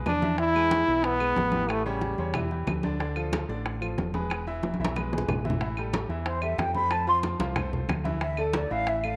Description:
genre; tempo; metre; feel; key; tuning
latin, salsa; 184 BPM; 4/4; straight; unclear; A4 = 440 Hz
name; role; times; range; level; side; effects
bright upright piano; accompaniment; 0.0-9.2 s; C#3 to F5; -37 LUFS; equal; none
fingered electric bass; bass; 0.0-9.2 s; E1 to F2; -35 LUFS; equal; none
bright trombone; melody; 0.1-2.5 s; G3 to E4; -27 LUFS; equal; none
bongos; percussion; 0.1-9.0 s; none; -38 LUFS; equal; none
claves; percussion; 0.1-9.2 s; none; -43 LUFS; equal; none
congas; percussion; 0.1-9.2 s; none; -34 LUFS; equal; none
mellow silver concert flute; melody; 6.3-9.2 s; A4 to C6; -29 LUFS; equal; slapback echo
room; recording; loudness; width
wet spring reverb, RT60 1.4 s, small room ambience; none; -27 LUFS; mono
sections
0.0-5.6 A section; 5.6-9.2 B section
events
drum fill 0.0-0.4, 4.6-5.6; flute solo 5.6-9.2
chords
0.0 E; 1.7 A7; 3.0 Dm; 4.3 E; 5.6 Am7; 6.9 F; 8.2 Dsus2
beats
0.07 | 0.39 0.72 1.04 1.37 | 1.70 2.02 2.35 2.67 | 3.00 3.33 3.65 3.98 | 4.31 4.63 4.96 5.29 | 5.61 5.94 6.26 6.59 | 6.92 7.24 7.57 7.90 | 8.22 8.55 8.88

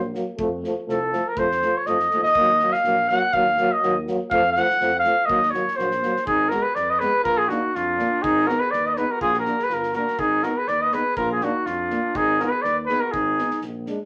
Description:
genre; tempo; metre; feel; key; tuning
balkan folk, Balkan brass band; 122 BPM; 2/4; swing 56% on 16ths; Eb dorian sharp4, Ab dorian sharp4 from 6.3 s; A4 = 440 Hz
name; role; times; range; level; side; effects
mellow tuba; bass; 0.0-13.9 s; G1 to F2; -36 LUFS; equal; none
mellow French horn; accompaniment; 0.1-14.0 s; A3 to Eb4; -33 LUFS; equal; none
mellow euphonium; accompaniment; 0.1-14.0 s; F3 to Cb4; -31 LUFS; equal; none
loose indie drum kit; percussion; 0.1-13.9 s; kick drum, snare drum; -45 LUFS; equal; none
clear flugelhorn; melody; 0.9-13.6 s; F4 to Gb5; -22 LUFS; equal; none
warm alto saxophone; second line; 6.3-13.6 s; D4 to Cb5; -31 LUFS; equal; none
room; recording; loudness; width
wet studio ambience, RT60 0.5 s; none; -22 LUFS; mono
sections
0.0-6.3 A section; 6.3-14.1 B section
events
flugelhorn solo 0.0-6.3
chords
0.4 F; 2.4 Ebm; 4.3 F; 5.3 Ebm; 6.3 Abm; 7.3 Bb; 8.2 Abm; 9.2 Bb; 10.2 Abm; 11.2 Bb; 12.2 Abm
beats
| 0.39 0.88 | 1.37 1.86 | 2.35 2.85 | 3.34 3.83 | 4.32 4.81 | 5.30 5.79 | 6.28 6.77 | 7.25 7.74 | 8.23 8.72 | 9.21 9.70 | 10.19 10.68 | 11.18 11.67 | 12.16 12.65 | 13.14 13.63

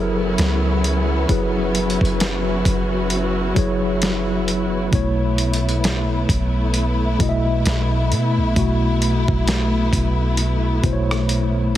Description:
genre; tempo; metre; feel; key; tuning
contemporary R&B; 66 BPM; 4/4; swing 58% on 16ths; unclear; A4 = 439 Hz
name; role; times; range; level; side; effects
mellow tine electric piano; accompaniment; 0.0-11.8 s; B2 to E5; -21 LUFS; left 1 dB; medium stereo tremolo
warm symphonic string section; sustained chords; 0.0-11.8 s; Gb3 to Ab4; -24 LUFS; left 1 dB; sidechain pumping
soft 808-style bass; bass; 0.0-11.8 s; Gb1 to B2; -22 LUFS; equal; none
dusty soul sampler-style drum kit; drums; 0.4-11.5 s; hi-hat, kick drum, rim click, snare drum; -22 LUFS; equal; overdrive
room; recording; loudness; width
light reverb, digital ambience; heavily compressed radio sound, multiband compression; -17 LUFS; side -13 dB against mid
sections
0.0-11.8 A section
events
drum fill 11.3-11.8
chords
0.0 Gb9sus4; 4.9 B9sus4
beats
0.38 | 1.29 2.20 3.11 4.02 | 4.93 5.83 6.74 7.65 | 8.56 9.47 10.38 11.29

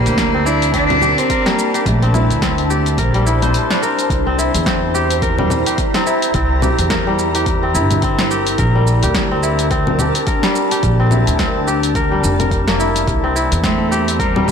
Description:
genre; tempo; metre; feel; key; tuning
organic downtempo; 107 BPM; 4/4; swing 58% on 16ths; C mixolydian; A4 = 436 Hz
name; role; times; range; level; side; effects
rich cello; melody; 0.0-3.5, 13.6-14.5 s; G3 to D4; -18 LUFS; right 1 dB; ping-pong delay
ethereal airy pad; sustained chords; 0.0-14.5 s; D4 to Bb5; -22 LUFS; equal; ensemble chorus, built-in reverb, sidechain pumping
kora; arpeggios; 0.0-14.5 s; G3 to C5; -19 LUFS; left 1 dB; ping-pong delay
upright bass; bass; 0.1-14.5 s; F1 to E2; -18 LUFS; equal; tube saturation
deep house drum kit; drums; 0.1-14.5 s; congas, hi-hat, shaker, snare drum; -21 LUFS; left 1 dB; overdrive
electronic kick drum; drums; 0.2-14.3 s; none; -22 LUFS; equal; overdrive
room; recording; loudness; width
light reverb, digital ambience; blown-out, overdriven recording, overdrive; -13 LUFS; side -7 dB against mid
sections
0.0-4.1 A section; 4.1-14.5 B section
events
none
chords
0.0 Bbmaj7; 4.1 C7; 8.6 Bbmaj7; 13.1 C7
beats
0.18 0.74 1.30 | 1.86 2.42 2.98 3.54 | 4.10 4.66 5.22 5.78 | 6.34 6.91 7.47 8.03 | 8.59 9.15 9.71 10.27 | 10.83 11.39 11.95 12.51 | 13.07 13.63 14.20

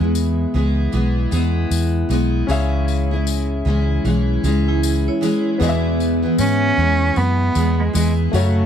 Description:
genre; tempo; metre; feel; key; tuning
acoustic pop; 77 BPM; 4/4; swing 60% on 16ths; E major; A4 = 440 Hz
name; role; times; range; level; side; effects
picked steel-string acoustic guitar; accompaniment; 0.0-8.7 s; E2 to F#4; -20 LUFS; equal; double-tracked left and right
warm concert grand piano; accompaniment; 0.0-8.7 s; A3 to E5; -28 LUFS; left 7 dB; none
vintage muted fingered electric bass; bass; 0.0-8.7 s; B1 to G#2; -19 LUFS; equal; none
tambourine; percussion; 0.1-8.6 s; none; -32 LUFS; left 14 dB; none
vibraphone with hard mallets; second line; 4.7-5.6 s; G#3 to C#5; -23 LUFS; right 5 dB; none
rich cello; melody; 6.4-8.7 s; G#3 to C#4; -19 LUFS; right 3 dB; none
room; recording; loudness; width
little or no reverb; dry, close 1970s-style studio recording; -16 LUFS; side -8 dB against mid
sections
0.0-5.6 A section; 5.6-8.7 B section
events
none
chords
0.0 E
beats
0.15 0.93 1.71 | 2.49 3.27 4.05 4.83 | 5.61 6.39 7.17 7.95

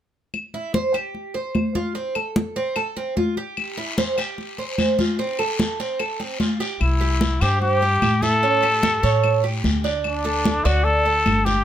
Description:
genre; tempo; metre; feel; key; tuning
latin, Cuban son and guajira; 148 BPM; 4/4; straight; C major; A4 = 440 Hz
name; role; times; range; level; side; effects
claves; percussion; 0.3-11.5 s; none; -29 LUFS; left 6 dB; none
congas; percussion; 0.3-11.6 s; none; -24 LUFS; left 1 dB; none
Cuban tres; arpeggios; 0.5-11.6 s; C4 to D5; -24 LUFS; right 3 dB; none
guiro; percussion; 3.6-11.6 s; none; -32 LUFS; left 4 dB; none
breathy trumpet; melody; 6.8-11.6 s; D4 to A4; -20 LUFS; left 1 dB; none
upright bass; bass; 6.8-11.6 s; G1 to A2; -22 LUFS; equal; none
room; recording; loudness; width
light reverb; none; -19 LUFS; side -10 dB against mid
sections
0.3-6.8 A section; 6.8-11.6 B section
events
none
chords
0.3 C; 2.0 F; 3.6 C; 5.2 F; 6.8 C; 8.4 A7; 10.0 D5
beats
| 0.34 0.74 1.15 1.55 | 1.96 2.36 2.76 3.17 | 3.57 3.98 4.38 4.79 | 5.19 5.59 6.00 6.40 | 6.81 7.21 7.62 8.02 | 8.43 8.83 9.24 9.64 | 10.05 10.45 10.86 11.26

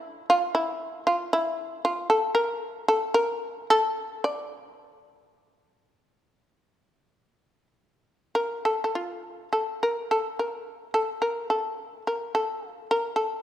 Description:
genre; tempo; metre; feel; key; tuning
japanese traditional, Japanese chamber music; 47-58 BPM; 4/4; rubato; D hirajoshi; A4 = 440 Hz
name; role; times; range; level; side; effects
shamisen; solo; 0.0-13.4 s; E4 to D5; -24 LUFS; equal; none
room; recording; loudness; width
light reverb; none; -24 LUFS; side -12 dB against mid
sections
0.0-8.9 A section; 8.9-13.4 B section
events
none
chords
none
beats
| 0.03 1.06 2.10 3.17 | 4.25 5.35 6.49 7.72 | 8.94 10.08 11.20 12.33

